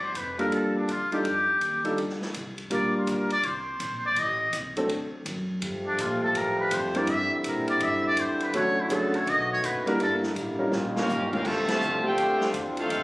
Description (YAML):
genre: jazz, big band swing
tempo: 165 BPM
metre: 4/4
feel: swing 65% on 8ths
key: D minor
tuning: A4 = 440 Hz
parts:
  - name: trumpet with metal mute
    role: melody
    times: 0.0-10.2 s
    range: D4 to E5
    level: -26 LUFS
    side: equal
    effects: none
  - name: upright bass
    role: bass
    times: 0.0-13.0 s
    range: F1 to Bb2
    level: -38 LUFS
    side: equal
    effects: none
  - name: swinging big-band drum kit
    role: drums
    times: 0.1-13.0 s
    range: crash cymbal, hi-hat, kick drum, ride cymbal, snare drum, toms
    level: -36 LUFS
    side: equal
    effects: none
  - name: warm concert grand piano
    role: accompaniment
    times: 0.4-10.7 s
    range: F#3 to Bb4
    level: -28 LUFS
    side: equal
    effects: none
  - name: bright trombone section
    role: sustained chords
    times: 5.6-13.0 s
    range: D3 to G4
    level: -30 LUFS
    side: equal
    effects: none
  - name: brilliant trumpet section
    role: melody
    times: 11.0-13.0 s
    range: Db4 to A5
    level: -28 LUFS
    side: equal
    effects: none
  - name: clear trombone section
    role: second line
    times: 11.0-13.0 s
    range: C3 to G4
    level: -28 LUFS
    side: equal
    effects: none
room: moderate concert hall reverb, RT60 1.7 s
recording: recorded on a phone in the room, club reverb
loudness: -24 LUFS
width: side -21 dB against mid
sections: 0.0-11.4 A section; 11.4-13.0 B section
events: muted trumpet solo 0.0-11.4; drum fill 10.7-11.4; band accent 11.6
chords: 0.0 Gm9; 1.2 F7sus2; 2.7 Bb6; 4.2 Adim; 4.9 D; 5.6 Gm9; 7.1 C9; 8.5 Dmaj7; 9.3 B7; 10.0 Em7b5; 10.7 Eb9; 11.4 Dm9